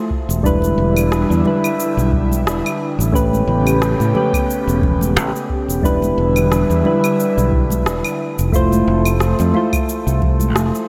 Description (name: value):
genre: sunset chillout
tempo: 89 BPM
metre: 4/4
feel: swing 55% on 16ths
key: E dorian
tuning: A4 = 440 Hz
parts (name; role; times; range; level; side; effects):
- soft electric-piano-like synth keys; accompaniment; 0.0-10.9 s; G3 to C5; -21 LUFS; equal; chorus, diffuse ambient delay
- airy breathy pad; sustained chords; 0.0-10.9 s; C#3 to G4; -24 LUFS; equal; chorus, phaser
- electronic kick drum; drums; 0.1-10.4 s; none; -23 LUFS; equal; none
- fingered electric bass; bass; 0.3-10.7 s; E1 to A2; -20 LUFS; equal; none
- electronic cabasa, claves and rim click; drums; 0.3-10.9 s; none; -28 LUFS; equal; none
- congas; percussion; 0.6-10.5 s; none; -30 LUFS; equal; none
room: wet lush hall reverb, RT60 3.0 s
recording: dreamy mix soaked in reverb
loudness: -16 LUFS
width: mono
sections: 0.0-10.9 A section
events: none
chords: 0.4 Em7; 3.1 A9; 5.8 Em7; 8.2 Fmaj7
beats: | 0.45 1.12 1.80 2.47 | 3.14 3.82 4.49 5.17 | 5.84 6.51 7.19 7.86 | 8.54 9.21 9.89 10.56